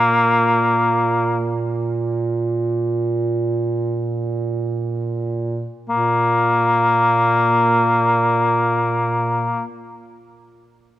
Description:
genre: caucasian folk, Caucasian lament.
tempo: free time.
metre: none.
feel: none.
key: unclear.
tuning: A4 = 440 Hz.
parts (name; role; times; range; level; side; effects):
mellow cor anglais; melody; 0.0-9.7 s; Bb3; -16 LUFS; left 2 dB; cassette tape.
dark duduk; drone; 0.0-9.7 s; Bb2; -21 LUFS; right 3 dB; none.
room: moderate lush hall reverb, RT60 2.7 s.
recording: home recording on cassette.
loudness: -16 LUFS.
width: side -13 dB against mid.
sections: 0.0-5.9 A section; 5.9-9.4 B section.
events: slowing down 0.0-5.9.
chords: none.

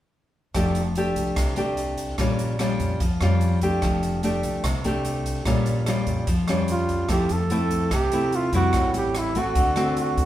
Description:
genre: bossa nova.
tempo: 146 BPM.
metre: 4/4.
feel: straight.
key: F major.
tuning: A4 = 441 Hz.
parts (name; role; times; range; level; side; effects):
nylon-string guitar; accompaniment; 0.5-10.3 s; A2 to G4; -24 LUFS; left 1 dB; none.
upright bass; bass; 0.5-10.3 s; F1 to F2; -27 LUFS; equal; none.
swinging big-band drum kit; drums; 0.5-10.3 s; hi-hat, kick drum, rim click; -28 LUFS; equal; none.
breathy trumpet; melody; 6.7-10.3 s; E4 to A4; -24 LUFS; right 3 dB; none.
room: moderate large studio reverb, RT60 1.2 s.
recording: band playing live in one room.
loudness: -21 LUFS.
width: side -13 dB against mid.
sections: 0.5-7.1 A section; 7.1-10.3 B section.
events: none.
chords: 0.5 F69; 2.2 Bbm6; 3.8 F69; 5.5 Bbm6; 7.1 Fmaj7; 8.7 Am7; 9.6 D7.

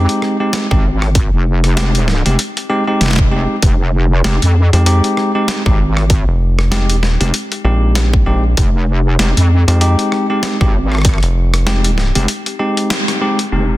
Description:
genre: glitch hop.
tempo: 97 BPM.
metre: 4/4.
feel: swing 58% on 16ths.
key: F minor.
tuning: A4 = 440 Hz.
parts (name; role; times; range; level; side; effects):
bell-like tine electric piano; stabs; 0.0-13.8 s; Ab3 to G4; -18 LUFS; equal; sidechain pumping, low-pass filter, ping-pong delay.
wobble bass; bass; 0.0-13.8 s; F1 to F2; -13 LUFS; equal; chorus, overdrive.
boom bap sampler-style drum kit; drums; 0.1-13.8 s; crash cymbal, hi-hat, rim click, shaker, snare drum; -20 LUFS; left 1 dB; low-pass filter on snare, low-pass filter on hats, low-pass filter on cymbals, low-pass filter on perc.
electronic kick drum; drums; 0.7-11.2 s; none; -14 LUFS; equal; none.
rubbery square bass; bass; 4.7-12.1 s; F1 to F2; -12 LUFS; equal; none.
room: light reverb, digital ambience.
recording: dense, heavily limited modern master.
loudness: -11 LUFS.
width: side -17 dB against mid.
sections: 0.0-13.5 A section.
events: break 12.3-13.5; band accent 12.9-13.2.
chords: 0.0 Fm9.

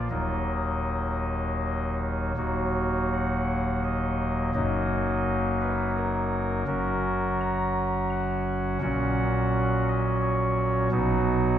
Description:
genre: classical, chorale-style piece for pipe organ.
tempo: 78-86 BPM.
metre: 3/4.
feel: rubato.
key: Eb minor.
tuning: A4 = 440 Hz.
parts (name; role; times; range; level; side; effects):
chamber organ, soft reed; solo; 0.0-11.6 s; Eb1 to Bb5; -24 LUFS; equal; none.
room: wet scoring stage reverb, RT60 2.0 s.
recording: heard from further back in the room.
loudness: -24 LUFS.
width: side -10 dB against mid.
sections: 0.0-2.4 A section; 2.4-11.6 B section.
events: none.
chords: 0.1 Ebm; 4.5 Ebm/Gb; 6.7 Gb; 8.8 Gb/Bb; 10.9 B.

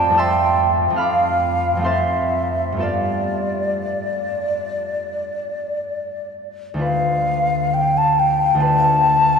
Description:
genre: classical, impressionist duo for flute and harp.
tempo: 58-76 BPM.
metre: 4/4.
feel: rubato.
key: D dorian.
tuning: A4 = 440 Hz.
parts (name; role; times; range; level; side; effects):
mellow hollow concert flute; melody; 0.0-9.4 s; D5 to A5; -18 LUFS; equal; none.
concert harp; accompaniment; 0.0-9.4 s; D2 to F6; -21 LUFS; left 1 dB; none.
room: wet cathedral reverb, RT60 5.1 s.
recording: dark, warm production.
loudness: -17 LUFS.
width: side -6 dB against mid.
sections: 0.0-6.8 A section; 6.8-9.4 B section.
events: none.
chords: 0.0 Fmaj7; 2.8 G9; 6.8 Dm6.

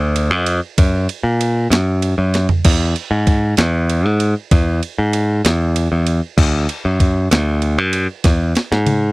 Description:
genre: indie rock.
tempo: 64 BPM (dotted quarters).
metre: 6/8.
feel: straight.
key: E lydian.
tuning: A4 = 444 Hz.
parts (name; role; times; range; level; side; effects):
modern bright picked electric bass; bass; 0.0-9.1 s; D2 to A#2; -15 LUFS; equal; none.
clean 12-bit digital drum machine; drums; 0.2-9.0 s; crash cymbal, kick drum, ride cymbal, snare drum, toms; -17 LUFS; equal; none.
room: little or no reverb.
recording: dry, close 1970s-style studio recording.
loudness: -14 LUFS.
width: side -23 dB against mid.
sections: 0.0-9.1 A section.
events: drum fill 2.3-2.6, 8.2-9.1.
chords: none.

